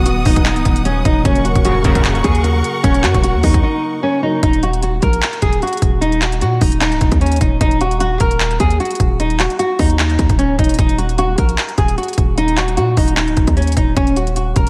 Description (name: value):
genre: hip hop, trap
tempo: 151 BPM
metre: 4/4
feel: half-time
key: unclear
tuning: A4 = 440 Hz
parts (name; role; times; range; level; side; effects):
- nylon-string guitar; melody; 0.0-14.7 s; Db4 to Bb4; -20 LUFS; equal; analog chorus, low-pass filter, delay
- mellow tine electric piano; accompaniment; 0.0-4.4 s; Db3 to D#5; -28 LUFS; equal; ensemble chorus, low-pass filter
- warm studio string section; sustained chords; 0.0-4.4 s; B3 to D#6; -26 LUFS; equal; none
- hard-hitting 808-style bass; bass; 0.0-14.7 s; Db1 to Bb2; -20 LUFS; equal; none
- trap drum kit; drums; 0.1-14.7 s; handclaps, hi-hat, kick drum; -19 LUFS; equal; none
- chorused polysynth; stabs; 1.6-2.1 s; Bb1 to Db3; -24 LUFS; equal; delay
room: moderate plate reverb, RT60 1.7 s, digital ambience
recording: dreamy mix soaked in reverb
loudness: -15 LUFS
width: mono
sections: 0.0-4.4 A section; 4.4-14.7 B section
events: break 3.6-4.4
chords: 0.0 B/D#; 1.2 Gb; 4.4 Gb5; 14.0 Gb5/Eb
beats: 0.06 0.46 0.85 | 1.25 1.65 2.04 2.44 | 2.84 3.24 3.63 4.03 | 4.43 4.83 5.22 5.62 | 6.02 6.42 6.81 7.21 | 7.61 8.01 8.40 8.80 | 9.20 9.60 9.99 10.39 | 10.79 11.18 11.58 11.98 | 12.38 12.77 13.17 13.57 | 13.97 14.36